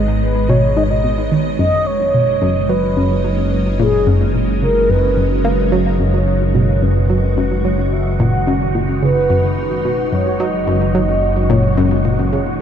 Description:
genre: ambient, sequencer-driven space music.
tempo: 109 BPM.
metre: 4/4.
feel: straight.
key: unclear.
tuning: A4 = 440 Hz.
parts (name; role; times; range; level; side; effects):
evolving wavetable pad; sustained chords; 0.0-12.6 s; D#3 to D#5; -23 LUFS; left 1 dB; ensemble chorus, built-in reverb, phaser.
analog pluck; riff; 0.0-12.4 s; F#2 to A#3; -18 LUFS; left 1 dB; chorus, tape echo.
analog drone; bass; 0.0-12.6 s; F#1 to G#1; -19 LUFS; equal; chorus.
wind-like tuned noise texture; texture; 0.0-12.6 s; D#4 to F#5; -30 LUFS; right 1 dB; built-in reverb.
mellow horn-like synth lead; melody; 0.2-12.1 s; G#4 to F#5; -19 LUFS; right 1 dB; chorus, tape echo.
room: moderate huge ambient reverb, RT60 7.6 s.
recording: dark, warm production.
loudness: -13 LUFS.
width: side -8 dB against mid.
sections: 0.0-12.6 A section.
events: fade-in on ambient pad 0.0-12.6; fade-in on synth texture 0.0-12.6; filter sweep on synth arpeggio sound 0.0-12.6.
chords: 0.0 G#m; 1.6 F#sus4.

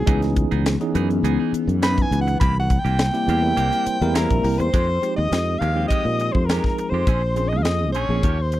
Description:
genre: electric jazz fusion.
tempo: 103 BPM.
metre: 4/4.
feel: straight.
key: F minor from 4.7 s.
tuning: A4 = 440 Hz.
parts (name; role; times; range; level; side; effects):
warm soprano saxophone; melody; 0.0-8.6 s; G#4 to B5; -24 LUFS; equal; none.
evolving wavetable pad; sustained chords; 0.0-4.7 s; C3 to E4; -29 LUFS; left 4 dB; none.
sustaining fretless electric bass; bass; 0.0-8.6 s; Bb1 to Bb2; -22 LUFS; equal; none.
bell-like tine electric piano; accompaniment; 0.1-8.2 s; E3 to G5; -25 LUFS; right 1 dB; medium stereo tremolo.
semi-hollow electric guitar; stabs; 0.1-8.6 s; Eb3 to G#4; -32 LUFS; right 10 dB; wide subtle chorus.
crisp fusion drum kit; drums; 0.1-8.6 s; hi-hat, kick drum, snare drum; -22 LUFS; equal; none.
jazz flute; second line; 4.2-8.6 s; Bb5 to F6; -31 LUFS; left 9 dB; none.
room: little or no reverb.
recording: dry, close 1970s-style studio recording.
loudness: -18 LUFS.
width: side -14 dB against mid.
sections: 0.0-4.7 A section; 4.7-8.6 B section.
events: soprano saxophone solo 0.0-4.7; tine electric piano fill 3.6-4.7.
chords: 0.1 C#m9; 2.4 C7; 4.7 Fm9; 7.1 Bbm9.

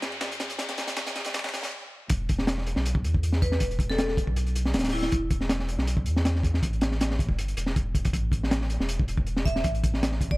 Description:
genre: drum and bass, jungle.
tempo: 159 BPM.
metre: 4/4.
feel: straight.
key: unclear.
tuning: A4 = 440 Hz.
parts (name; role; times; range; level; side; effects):
saturated sub bass; bass; 0.0-10.4 s; D1 to F#2; -28 LUFS; equal; none.
breakbeat sampler-style drum kit; drums; 0.0-1.5 s; hi-hat, snare drum; -38 LUFS; left 1 dB; high-pass filter on hats, high-pass filter on snare, high-pass filter on room.
crunchy breakbeat drum kit; drums; 0.0-10.4 s; hi-hat, kick drum, snare drum; -26 LUFS; equal; high-pass filter on kick, high-pass filter on hats, high-pass filter on snare, high-pass filter on room.
riser; sound effects; 0.0-1.7 s; none; -35 LUFS; left 1 dB; none.
vibraphone with hard mallets; melody; 3.4-5.1, 9.5-10.4 s; E4 to E5; -32 LUFS; equal; dub echo.
room: small room ambience.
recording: high-pass filter.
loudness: -24 LUFS.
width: side -21 dB against mid.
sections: 0.0-2.1 A section; 2.1-10.4 B section.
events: build-up 0.0-2.1; drum fill 0.0-1.7; riser 0.0-1.7; stop 1.7-2.1; drop 2.1-10.4.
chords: 0.0 F#5; 2.1 E5; 6.6 A5.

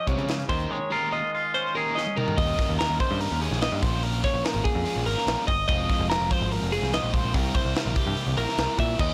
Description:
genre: math rock and midwest emo.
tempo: 145 BPM.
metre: 4/4.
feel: straight.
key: unclear.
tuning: A4 = 440 Hz.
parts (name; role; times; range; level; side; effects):
twangy electric guitar; accompaniment; 0.0-4.0 s; C3 to Ab4; -33 LUFS; equal; none.
twelve-string electric guitar; arpeggios; 0.0-9.1 s; G4 to E5; -30 LUFS; equal; none.
biting overdriven guitar; riff; 0.1-9.1 s; Bb2 to Bb4; -34 LUFS; equal; none.
picked electric bass; bass; 0.1-9.1 s; F1 to Db3; -31 LUFS; equal; none.
crisp fusion drum kit; drums; 0.1-9.1 s; crash cymbal, hi-hat, kick drum, snare drum, toms; -30 LUFS; equal; soft clipping on snare.
room: light reverb.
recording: blown-out, overdriven recording, overdrive.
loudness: -25 LUFS.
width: mono.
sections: 0.0-2.4 A section; 2.4-9.1 B section.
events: drum fill 2.0-2.4.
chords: 0.5 Eb9sus4; 2.4 Eb7; 3.8 Bbm7; 5.7 Fm7; 7.3 C7.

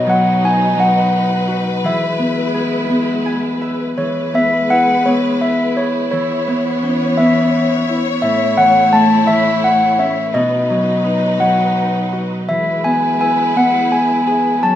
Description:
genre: children's music, lullaby.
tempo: 56 BPM (dotted quarters).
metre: 6/8.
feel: straight.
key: E major.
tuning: A4 = 441 Hz.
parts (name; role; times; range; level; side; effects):
handbells; melody; 0.0-14.8 s; C#5 to A5; -16 LUFS; left 1 dB; none.
Celtic harp; accompaniment; 0.0-14.8 s; A2 to G#5; -17 LUFS; equal; none.
warm studio string section; sustained chords; 0.0-14.8 s; E3 to C#5; -21 LUFS; left 1 dB; none.
room: moderate recital hall reverb, RT60 1.6 s.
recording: minimal, uncompressed stereo recording.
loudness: -13 LUFS.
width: side -11 dB against mid.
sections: 0.0-4.0 A section; 4.0-14.8 A section.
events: harp fill 2.9-4.0.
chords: 0.0 B; 1.8 E; 6.1 C#m7/E; 8.2 A; 10.3 B; 12.5 E.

